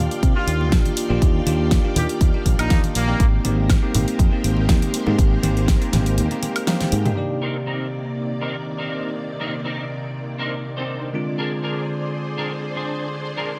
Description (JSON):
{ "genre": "nu-disco, nu disco", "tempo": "121 BPM", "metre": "4/4", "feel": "swing 53% on 16ths", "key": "C minor", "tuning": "A4 = 441 Hz", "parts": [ { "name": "bell-like tine electric piano", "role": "accompaniment", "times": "0.0-13.6 s", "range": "C3 to D5", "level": "-28 LUFS", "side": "equal", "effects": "phaser, sidechain pumping, low-pass filter, analog delay" }, { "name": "string machine, full ensemble", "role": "sustained chords", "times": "0.0-13.6 s", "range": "C3 to G5", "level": "-32 LUFS", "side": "equal", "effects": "ensemble chorus, sidechain pumping" }, { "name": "overdriven fingered electric bass", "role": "bass", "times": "0.0-7.1 s", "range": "Ab1 to C3", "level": "-24 LUFS", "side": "equal", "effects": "none" }, { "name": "pop drum kit", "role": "drums", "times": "0.1-7.1 s", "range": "hi-hat, snare drum, toms, woodblock", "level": "-28 LUFS", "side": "equal", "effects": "none" }, { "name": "electronic kick drum", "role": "drums", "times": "0.2-5.8 s", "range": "none", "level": "-20 LUFS", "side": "equal", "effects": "none" }, { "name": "bright trumpet section", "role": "melody", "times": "0.4-3.3 s", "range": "Bb3 to G4", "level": "-31 LUFS", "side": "equal", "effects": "analog delay" }, { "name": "congas", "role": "percussion", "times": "0.6-7.2 s", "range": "none", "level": "-30 LUFS", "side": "equal", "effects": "none" }, { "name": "clean electric guitar", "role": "riff", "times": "7.4-13.5 s", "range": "C4 to C5", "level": "-31 LUFS", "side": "equal", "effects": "ensemble chorus, low-pass filter, analog delay" } ], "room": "light reverb, digital ambience", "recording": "none", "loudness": "-21 LUFS", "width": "mono", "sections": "0.0-7.2 A section; 7.2-13.6 B section", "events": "break 6.2-7.2; drum fill 6.7-7.2", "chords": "0.0 Ebmaj9; 3.2 Abmaj9; 7.2 Cm9; 11.1 Bb7/D" }